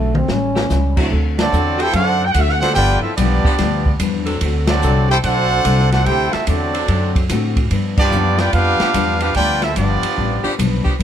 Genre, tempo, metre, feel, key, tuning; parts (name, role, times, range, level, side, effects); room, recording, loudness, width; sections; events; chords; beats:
jazz, big band swing; 146 BPM; 4/4; swing 65% on 8ths; D major; A4 = 440 Hz
breathy trombone; melody; 0.0-1.0 s; A3 to C#4; -22 LUFS; equal
picked steel-string acoustic guitar; accompaniment; 0.0-11.0 s; G2 to F#4; -25 LUFS; left 8 dB
upright bass; bass; 0.0-11.0 s; G1 to A2; -18 LUFS; equal
open jazz drum kit; drums; 0.1-11.0 s; crash cymbal, hi-hat, kick drum, ride cymbal, snare drum, toms; -22 LUFS; equal
warm saxophone section; sustained chords; 0.6-10.9 s; D3 to A4; -26 LUFS; equal
clear upright piano; accompaniment; 1.0-1.1 s; F#3 to E4; -23 LUFS; right 3 dB
clear trumpet section; melody; 1.4-10.5 s; B3 to G5; -18 LUFS; right 1 dB
muted trombone section; second line; 1.4-10.5 s; F3 to G4; -24 LUFS; right 3 dB
little or no reverb; close, detailed microphones; -14 LUFS; side -9 dB against mid
0.0-1.1 A section; 1.1-11.0 B section
drum fill 0.0-0.7; trombone solo 0.0-1.1; band accent 1.3, 4.6, 7.9
0.3 A7; 1.1 D7; 2.8 G7; 4.4 D7; 7.7 G7
0.29 0.70 | 1.11 1.52 1.94 2.35 | 2.76 3.17 3.58 4.00 | 4.41 4.82 5.23 5.64 | 6.06 6.47 6.88 7.29 | 7.71 8.12 8.53 8.94 | 9.35 9.76 10.17 10.58 | 10.99